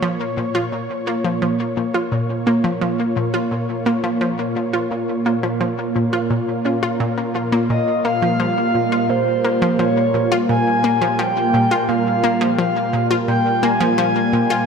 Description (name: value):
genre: ambient, sequencer-driven space music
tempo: 86 BPM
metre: 4/4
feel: straight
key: Bb dorian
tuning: A4 = 440 Hz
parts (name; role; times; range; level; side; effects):
- lush unison pad; sustained chords; 0.0-14.7 s; Bb2 to Db5; -20 LUFS; right 1 dB; chorus
- analog pluck; riff; 0.0-14.6 s; Bb2 to F4; -21 LUFS; equal; chorus, ping-pong delay
- breathy flute-like synth lead; melody; 7.7-14.7 s; C5 to Ab5; -19 LUFS; equal; wide subtle chorus, ping-pong delay
room: wet plate reverb, RT60 2.3 s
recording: none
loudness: -16 LUFS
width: side -6 dB against mid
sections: 0.0-14.7 A section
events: none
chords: 0.0 Bbm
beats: 0.03 0.72 1.42 | 2.12 2.82 3.51 4.21 | 4.91 5.61 6.30 7.00 | 7.70 8.40 9.10 9.79 | 10.49 11.19 11.88 12.58 | 13.28 13.98